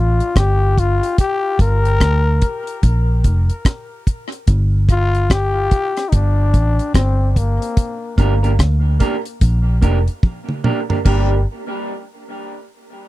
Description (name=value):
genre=dub reggae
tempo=73 BPM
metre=4/4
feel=swing 62% on 16ths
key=G minor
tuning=A4 = 440 Hz
part: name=growling trombone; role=melody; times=0.0-11.4 s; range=G3 to Bb4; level=-22 LUFS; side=left 4 dB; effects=tape echo
part: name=vintage muted fingered electric bass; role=bass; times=0.0-11.4 s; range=F1 to D2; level=-15 LUFS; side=equal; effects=none
part: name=deep reggae drum kit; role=drums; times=0.2-11.3 s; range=crash cymbal, hi-hat, kick drum, rim click, toms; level=-15 LUFS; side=equal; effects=none
part: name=electric guitar through a small old amp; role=accompaniment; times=8.2-11.3 s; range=Bb3 to Bb4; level=-23 LUFS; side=right 4 dB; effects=tape echo
room=little or no reverb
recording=dry, close 1970s-style studio recording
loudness=-14 LUFS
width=side -16 dB against mid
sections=0.0-11.1 A section; 11.1-13.1 B section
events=break 0.0-7.8; drum fill 10.2-11.1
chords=0.0 G5; 1.2 Gm; 4.5 G5; 7.8 Gm